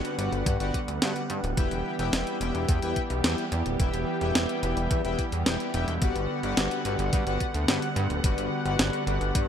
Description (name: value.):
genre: synthwave.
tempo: 108 BPM.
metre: 4/4.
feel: straight.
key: G major.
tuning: A4 = 440 Hz.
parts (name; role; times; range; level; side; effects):
warm analog pad; sustained chords; 0.0-9.5 s; D3 to F#5; -31 LUFS; right 1 dB; wide subtle chorus, sidechain pumping.
analog synth brass; stabs; 0.0-9.5 s; E4 to G5; -32 LUFS; left 5 dB; chorus, ping-pong delay.
chorused synth bass; bass; 0.0-9.5 s; D1 to G2; -30 LUFS; equal; tube saturation, sidechain pumping.
clean 12-bit digital drum machine; drums; 0.0-9.5 s; hi-hat, snare drum; -30 LUFS; equal; none.
electronic kick drum; drums; 0.5-9.5 s; none; -27 LUFS; equal; none.
room: moderate plate reverb, RT60 2.3 s.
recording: bright 1980s-style digital production.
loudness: -25 LUFS.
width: side -8 dB against mid.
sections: 0.0-9.5 A section.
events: none.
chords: 0.0 Gmaj7; 1.6 Em; 6.0 Gmaj7.